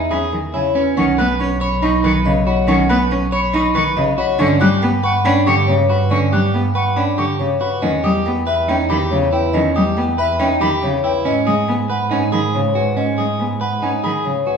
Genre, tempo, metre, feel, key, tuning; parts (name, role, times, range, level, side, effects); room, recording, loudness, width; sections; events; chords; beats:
classical, minimalist pattern music; 140 BPM; 4/4; straight; A4 = 440 Hz
vibraphone with soft mallets; melody; 0.0-14.6 s; B4 to C#6; -21 LUFS; left 6 dB
electric guitar at the edge of break-up; arpeggios; 0.0-14.6 s; C#4 to C#5; -20 LUFS; right 4 dB
rich double bass; bass; 0.0-14.6 s; B1 to G#2; -21 LUFS; right 2 dB
rich cello; accompaniment; 0.1-14.4 s; C#3 to D#4; -21 LUFS; equal
mellow concert flute; arpeggios; 0.1-14.5 s; G5 to F#6; -25 LUFS; left 2 dB
wet stone room reverb, RT60 1.4 s; dark, warm production; -14 LUFS; side -6 dB against mid
1.0-14.6 A section
0.0 Emaj7; 1.0 Bsus2; 4.4 Gmaj7; 7.8 Em6; 11.3 G#m
0.11 0.54 | 0.97 1.39 1.82 2.25 | 2.68 3.11 3.54 3.97 | 4.39 4.82 5.25 5.68 | 6.11 6.54 6.97 7.39 | 7.82 8.25 8.68 9.11 | 9.54 9.97 10.39 10.82 | 11.25 11.68 12.11 12.54 | 12.97 13.39 13.82 14.25